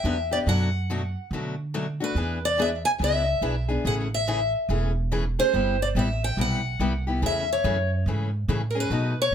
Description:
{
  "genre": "acoustic string swing (jazz manouche)",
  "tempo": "142 BPM",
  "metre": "4/4",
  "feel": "swing 62% on 8ths",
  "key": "A major",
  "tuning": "A4 = 440 Hz",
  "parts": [
    { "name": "picked steel-string acoustic guitar", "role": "melody", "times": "0.0-9.3 s", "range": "Bb4 to G#5", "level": "-26 LUFS", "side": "equal", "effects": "slapback echo" },
    { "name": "picked steel-string acoustic guitar", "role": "accompaniment", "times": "0.0-9.1 s", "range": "B2 to G#4", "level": "-28 LUFS", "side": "left 3 dB", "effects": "none" },
    { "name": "upright bass", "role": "bass", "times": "0.0-9.3 s", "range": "E1 to D3", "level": "-27 LUFS", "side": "right 1 dB", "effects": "none" }
  ],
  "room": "light reverb",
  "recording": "none",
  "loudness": "-23 LUFS",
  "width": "side -8 dB against mid",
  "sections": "0.0-5.5 A section; 5.5-9.3 A section",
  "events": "none",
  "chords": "0.5 D6/F#; 2.2 E7; 3.8 Amaj7; 5.5 Cmaj7; 7.2 Amaj7",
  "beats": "0.04 | 0.47 0.89 1.31 1.74 | 2.16 2.58 3.00 3.43 | 3.85 4.27 4.69 5.12 | 5.54 5.96 6.38 6.81 | 7.23 7.65 8.07 8.49 | 8.92 9.34"
}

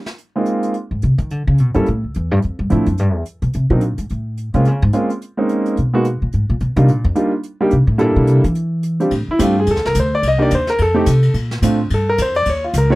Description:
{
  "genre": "jazz piano trio",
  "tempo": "215 BPM",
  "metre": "4/4",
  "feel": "swing 59% on 8ths",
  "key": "unclear",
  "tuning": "A4 = 441 Hz",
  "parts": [
    { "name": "jazz brush drum kit", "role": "drums", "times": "0.1-12.8 s", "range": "hi-hat, ride cymbal, snare drum", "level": "-32 LUFS", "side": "left 1 dB", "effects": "none" },
    { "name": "clear concert grand piano", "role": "melody", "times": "0.4-13.0 s", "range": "F3 to Eb5", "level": "-16 LUFS", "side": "equal", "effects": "none" },
    { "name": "upright bass", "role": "bass", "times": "0.9-13.0 s", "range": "C2 to E3", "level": "-16 LUFS", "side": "equal", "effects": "none" }
  ],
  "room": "light reverb",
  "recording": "dry, close 1970s-style studio recording",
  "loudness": "-14 LUFS",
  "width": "side -19 dB against mid",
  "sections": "0.2-9.1 A section; 9.1-13.0 A section",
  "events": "upright bass solo 0.0-9.1; grand piano solo 9.1-13.0",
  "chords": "0.2 Ab6; 1.3 Em7 (rootless); 1.9 A7; 2.4 Dm (rootless); 3.5 C7(no3); 4.1 F (rootless); 4.7 Bbm7; 5.8 N.C.; 6.3 Abadd9; 6.9 Ebmaj9; 8.0 C13; 9.1 F69 (rootless); 10.2 Cm7; 10.8 F; 11.3 Bbmaj9",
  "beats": "| 0.18 0.46 0.74 1.02 | 1.30 1.58 1.86 2.14 | 2.42 2.70 2.98 3.26 | 3.54 3.82 4.10 4.38 | 4.66 4.93 5.21 5.49 | 5.77 6.05 6.33 6.61 | 6.88 7.16 7.44 7.72 | 8.00 8.28 8.55 8.83 | 9.11 9.39 9.67 9.95 | 10.23 10.51 10.79 11.07 | 11.35 11.62 11.90 12.18 | 12.46 12.74"
}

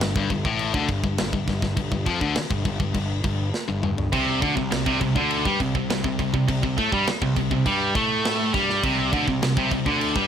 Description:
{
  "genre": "heavy metal",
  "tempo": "102 BPM",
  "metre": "4/4",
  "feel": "straight",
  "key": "unclear",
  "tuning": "A4 = 440 Hz",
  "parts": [
    { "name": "high-gain distorted guitar", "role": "riff", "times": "0.0-10.3 s", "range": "G2 to A3", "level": "-24 LUFS", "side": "left 5 dB", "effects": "distortion" },
    { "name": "fuzz picked electric bass", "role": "bass", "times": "0.0-10.3 s", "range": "G1 to A2", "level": "-29 LUFS", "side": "right 1 dB", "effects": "overdrive" },
    { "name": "tight metal drum kit", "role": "drums", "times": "0.0-10.3 s", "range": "crash cymbal, kick drum, snare drum, toms", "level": "-27 LUFS", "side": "right 1 dB", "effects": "none" },
    { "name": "tight distorted guitar", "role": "riff", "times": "4.1-10.3 s", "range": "C3 to A3", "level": "-26 LUFS", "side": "right 14 dB", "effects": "distortion" }
  ],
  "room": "small room ambience",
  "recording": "none",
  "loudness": "-21 LUFS",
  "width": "side -8 dB against mid",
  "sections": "0.0-10.3 A section",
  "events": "drum fill 3.5-4.1",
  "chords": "0.0 G5; 4.1 C5",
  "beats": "0.02 0.60 1.19 | 1.78 2.37 2.95 3.54 | 4.13 4.72 5.31 5.89 | 6.48 7.07 7.66 8.25 | 8.84 9.42 10.01"
}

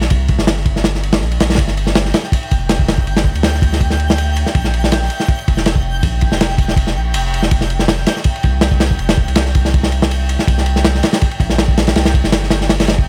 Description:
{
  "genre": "drum and bass, jungle",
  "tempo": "162 BPM",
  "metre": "4/4",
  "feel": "straight",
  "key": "unclear",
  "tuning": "A4 = 441 Hz",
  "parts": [
    { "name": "saturated sub bass", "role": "bass", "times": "0.0-13.1 s", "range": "F1 to D2", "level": "-20 LUFS", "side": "equal", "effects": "tube saturation" },
    { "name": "crunchy breakbeat drum kit", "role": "drums", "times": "0.0-13.1 s", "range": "kick drum, ride cymbal, snare drum", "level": "-17 LUFS", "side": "equal", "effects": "none" },
    { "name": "twinkling granular texture", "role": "texture", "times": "1.8-13.1 s", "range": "G5 to G6", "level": "-29 LUFS", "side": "equal", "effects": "built-in reverb" }
  ],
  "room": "little or no reverb",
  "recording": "none",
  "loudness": "-15 LUFS",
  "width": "mono",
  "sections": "0.0-13.1 A section",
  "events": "none",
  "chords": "0.0 C5; 1.6 G5; 4.5 Bb5; 7.5 F5; 10.5 C5",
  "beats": "| 0.10 0.48 0.85 1.22 | 1.59 1.96 2.33 2.70 | 3.07 3.44 3.81 4.18 | 4.55 4.92 5.29 5.66 | 6.03 6.40 6.77 7.14 | 7.51 7.88 8.25 8.62 | 8.99 9.37 9.73 10.11 | 10.48 10.85 11.22 11.59 | 11.96 12.33 12.70 13.07"
}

